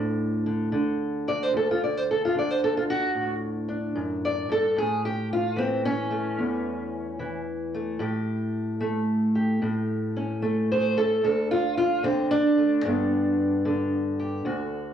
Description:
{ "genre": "acoustic country blues, solo or duo", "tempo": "74 BPM", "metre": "4/4", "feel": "swing 66% on 8ths", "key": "D major", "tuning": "A4 = 439 Hz", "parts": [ { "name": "fingerpicked steel-string acoustic guitar", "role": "solo", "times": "0.0-14.9 s", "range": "D2 to D5", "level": "-23 LUFS", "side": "equal", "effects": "cassette tape" } ], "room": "wet studio reverb, RT60 0.6 s", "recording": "home recording on cassette, small room reverb", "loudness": "-23 LUFS", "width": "side -9 dB against mid", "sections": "0.0-14.9 A section", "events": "steel-string acoustic guitar solo 0.0-14.9", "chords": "0.0 D7; 4.8 A7; 11.2 D5; 12.8 G" }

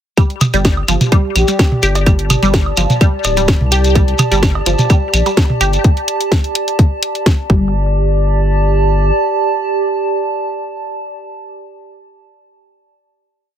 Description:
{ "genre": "minimal techno", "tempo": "127 BPM", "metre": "4/4", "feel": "swing 53% on 16ths", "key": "unclear", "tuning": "A4 = 439 Hz", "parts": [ { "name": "resonant blip pluck", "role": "riff", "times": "0.2-7.9 s", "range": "F3 to G4", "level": "-19 LUFS", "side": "right 1 dB", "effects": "phaser, sidechain pumping, ping-pong delay" }, { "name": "electronic kick drum", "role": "drums", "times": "0.2-7.6 s", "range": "none", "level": "-12 LUFS", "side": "equal", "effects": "none" }, { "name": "garage drum kit", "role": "drums", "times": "0.2-7.4 s", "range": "hi-hat, snare drum", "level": "-18 LUFS", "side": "left 1 dB", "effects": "none" }, { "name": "electronic claves, toms, woodblock and cowbell", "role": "percussion", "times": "0.2-5.7 s", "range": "none", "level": "-18 LUFS", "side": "right 2 dB", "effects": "none" }, { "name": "shekere", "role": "percussion", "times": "0.2-5.8 s", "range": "none", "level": "-23 LUFS", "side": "left 3 dB", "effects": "none" }, { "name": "warbly tape-like pad", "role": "texture", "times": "1.0-11.3 s", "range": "G4 to A5", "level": "-18 LUFS", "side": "right 2 dB", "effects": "chorus, built-in reverb, sidechain pumping" }, { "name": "round analog bass", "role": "bass", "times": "0.5-9.1 s", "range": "D1 to C2", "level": "-15 LUFS", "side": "equal", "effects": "sidechain pumping" }, { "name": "breathy flute-like synth lead", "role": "melody", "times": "1.4-1.8 s", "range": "G4", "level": "-21 LUFS", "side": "left 4 dB", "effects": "lush chorus, cassette tape, ping-pong delay" } ], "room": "light reverb", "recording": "heavily compressed radio sound", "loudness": "-11 LUFS", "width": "side -10 dB against mid", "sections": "0.2-7.7 drop; 7.7-11.5 final note", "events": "drop 0.2-7.7", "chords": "0.2 G5" }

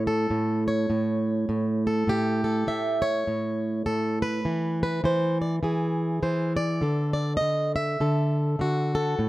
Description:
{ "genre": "acoustic country blues, solo or duo", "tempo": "102 BPM", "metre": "4/4", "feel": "swing 60% on 8ths", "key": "unclear", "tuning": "A4 = 440 Hz", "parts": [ { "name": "fingerpicked plugged-in swing-style acoustic guitar", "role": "solo", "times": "0.0-9.3 s", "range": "A2 to E5", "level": "-23 LUFS", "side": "equal", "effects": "none" } ], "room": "light reverb", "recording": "none", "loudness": "-23 LUFS", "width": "side -17 dB against mid", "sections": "0.0-9.3 A section", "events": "none", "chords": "0.0 N.C.; 4.5 E; 6.8 D" }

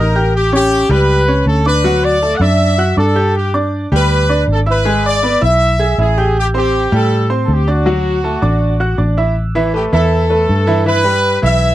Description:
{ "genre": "latin", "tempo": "160 BPM", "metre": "4/4", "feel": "straight", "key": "unclear", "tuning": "A4 = 440 Hz", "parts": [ { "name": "bright trumpet section", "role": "melody", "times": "0.0-11.7 s", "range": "F#4 to F#5", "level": "-16 LUFS", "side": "equal", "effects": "none" }, { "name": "bright grand piano", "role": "accompaniment", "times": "0.0-11.7 s", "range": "E3 to G#6", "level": "-17 LUFS", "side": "right 1 dB", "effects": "none" }, { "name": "vintage muted fingered electric bass", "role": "bass", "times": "0.0-11.7 s", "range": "Ab1 to A2", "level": "-15 LUFS", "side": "equal", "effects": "none" } ], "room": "little or no reverb", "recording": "dry, close 1970s-style studio recording", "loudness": "-11 LUFS", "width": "side -14 dB against mid", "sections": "0.0-9.4 A section; 9.4-11.7 B section", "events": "none", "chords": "0.3 A7; 1.8 Dadd9; 3.4 G5; 4.9 E/G#; 6.4 Am7; 7.9 Dadd9; 9.4 Asus2; 10.9 Em" }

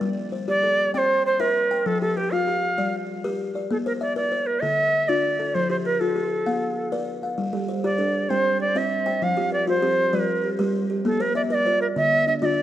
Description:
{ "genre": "southern african traditional, mbira-style interlocking cycle", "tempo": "131 BPM (dotted quarters)", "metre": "12/8", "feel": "straight", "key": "G equiheptatonic", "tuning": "A4 = 441 Hz", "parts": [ { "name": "buzzing kalimba", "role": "arpeggios", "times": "0.0-12.6 s", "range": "D3 to G5", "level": "-26 LUFS", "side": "left 4 dB", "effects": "none" }, { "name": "kalimba", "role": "arpeggios", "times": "0.0-0.2, 7.5-12.6 s", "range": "D3 to E5-43c", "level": "-28 LUFS", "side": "right 4 dB", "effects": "tape echo" }, { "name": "reedy Native American-style cedar flute", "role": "melody", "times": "0.5-12.6 s", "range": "G4 to F5+28c", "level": "-22 LUFS", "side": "right 1 dB", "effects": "none" } ], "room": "moderate plate reverb, RT60 3.6 s", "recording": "rough home demo mix", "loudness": "-20 LUFS", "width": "side -12 dB against mid", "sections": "0.0-12.6 A section", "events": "none", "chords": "0.0 Gm; 0.9 C; 1.9 Fadd9; 2.8 Gm; 3.7 Bb; 4.6 Dm; 5.5 F; 6.5 Bb; 7.4 Gm; 8.3 C; 9.2 F; 10.1 Gm; 11.0 Bb; 12.0 Dm" }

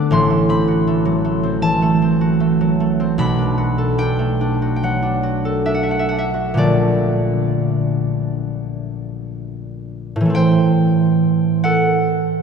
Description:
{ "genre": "classical, solo harp piece", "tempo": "54-80 BPM", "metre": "4/4", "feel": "rubato", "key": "A dorian", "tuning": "A4 = 441 Hz", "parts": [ { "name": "concert harp", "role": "solo", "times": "0.0-12.4 s", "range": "G1 to D6", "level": "-15 LUFS", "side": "right 1 dB", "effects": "none" } ], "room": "wet cathedral reverb, RT60 5.1 s", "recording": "heard from further back in the room", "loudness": "-15 LUFS", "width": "side -6 dB against mid", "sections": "0.0-10.3 A section; 10.3-12.4 B section", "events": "none", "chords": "0.1 Am6; 3.2 Bm7; 6.6 Bbmaj7; 10.3 Am7" }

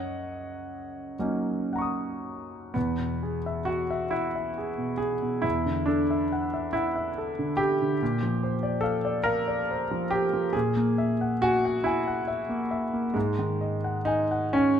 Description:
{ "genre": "classical, impressionist solo piano", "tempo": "38-50 BPM (dotted quarters)", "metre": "6/8", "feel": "rubato", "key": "E lydian", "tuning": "A4 = 440 Hz", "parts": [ { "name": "warm concert grand piano", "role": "solo", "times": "0.0-14.8 s", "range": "E2 to Eb6", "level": "-25 LUFS", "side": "equal", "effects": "none" } ], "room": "light reverb", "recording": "close, detailed microphones", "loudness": "-25 LUFS", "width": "side -8 dB against mid", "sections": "0.0-2.8 A section; 2.8-14.8 B section", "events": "none", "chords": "0.0 Gb6; 2.8 Eadd9; 5.4 Dadd9/E; 8.0 A#add9; 10.5 F#9/A#; 13.1 Ab5" }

